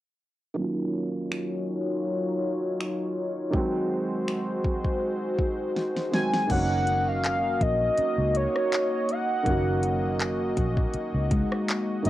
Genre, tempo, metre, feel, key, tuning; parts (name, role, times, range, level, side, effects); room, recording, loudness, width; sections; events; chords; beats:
contemporary R&B; 81 BPM; 4/4; swing 54% on 16ths; F# major; A4 = 439 Hz
felt-muted upright piano; accompaniment; 0.5-12.1 s; D#3 to F#4; -29 LUFS; right 2 dB; low-pass filter, cassette tape, plate reverb
warm analog pad; sustained chords; 0.6-12.1 s; F#3 to D#5; -31 LUFS; left 2 dB; lush chorus, low-pass filter, cassette tape
smooth R&B drum kit; drums; 1.3-12.1 s; crash cymbal, finger snaps, handclaps, hi-hat, kick drum, rim click, snare drum; -29 LUFS; equal; cassette tape
warm velvety synth lead; melody; 6.1-12.1 s; C#5 to G#5; -27 LUFS; equal; chorus, cassette tape, tape echo, plate reverb
vintage muted fingered electric bass; bass; 6.5-12.1 s; F#1 to C#2; -29 LUFS; equal
handpan; texture; 6.9-12.1 s; G#3 to C#4; -34 LUFS; left 2 dB; stereo widening, cassette tape, tape echo
moderate studio reverb, RT60 0.6 s; home recording on cassette; -24 LUFS; side -14 dB against mid
0.6-6.5 A section; 6.5-12.1 B section
filter sweep 0.6-6.5; drum fill 5.8-6.5
0.6 D#m9; 3.5 G#7; 6.5 F#6
| 0.57 1.31 2.05 2.79 | 3.53 4.27 5.01 5.76 | 6.50 7.24 7.98 8.72 | 9.46 10.20 10.94 11.68